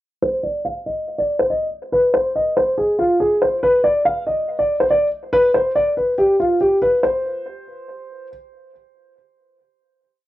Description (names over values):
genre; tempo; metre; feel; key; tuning
hip hop; 141 BPM; 4/4; half-time; C harmonic minor; A4 = 440 Hz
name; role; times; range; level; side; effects
dark concert grand piano; solo; 0.2-8.3 s; F4 to F5; -16 LUFS; equal; low-pass filter, cassette tape
room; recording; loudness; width
light reverb; home recording on cassette; -16 LUFS; side -15 dB against mid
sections
0.2-7.0 breakdown; 7.0-10.3 final note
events
filter sweep on grand piano 0.2-7.0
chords
none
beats
| 0.22 0.65 1.07 1.50 | 1.93 2.35 2.78 3.20 | 3.63 4.05 4.48 4.90 | 5.33 5.75 6.18 6.61 | 7.03 7.46 7.88